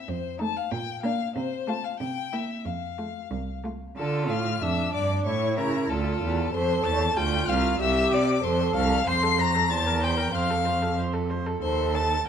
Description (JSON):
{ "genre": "quick classical-period movement for string quartet", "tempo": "94 BPM", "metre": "2/4", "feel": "straight", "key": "F major, D minor from 4.0 s, F major from 9.1 s", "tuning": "A4 = 440 Hz", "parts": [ { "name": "rich violin", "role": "melody", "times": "0.0-12.3 s", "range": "C5 to C7", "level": "-31 LUFS", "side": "left 10 dB", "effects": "none" }, { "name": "rich cello", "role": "bass", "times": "0.1-12.2 s", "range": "C2 to D3", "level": "-27 LUFS", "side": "right 3 dB", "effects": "none" }, { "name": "warm violin", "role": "second line", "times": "0.4-12.3 s", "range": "D4 to C6", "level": "-28 LUFS", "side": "left 3 dB", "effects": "none" }, { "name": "rich viola", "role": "accompaniment", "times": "0.4-12.2 s", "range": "A3-23c to C5", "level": "-30 LUFS", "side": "right 2 dB", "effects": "none" } ], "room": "moderate recital hall reverb, RT60 1.7 s", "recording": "dark, warm production", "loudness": "-23 LUFS", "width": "side -8 dB against mid", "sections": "0.0-4.0 A section; 4.0-12.3 B section", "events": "none", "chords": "0.1 F7; 0.7 Bb; 1.4 F/C; 2.0 C7; 2.6 F; 4.0 Dm; 5.3 A; 5.9 Dm; 6.5 F; 7.8 C; 8.4 F; 9.7 C7/E; 10.3 F; 11.6 Adim/Eb" }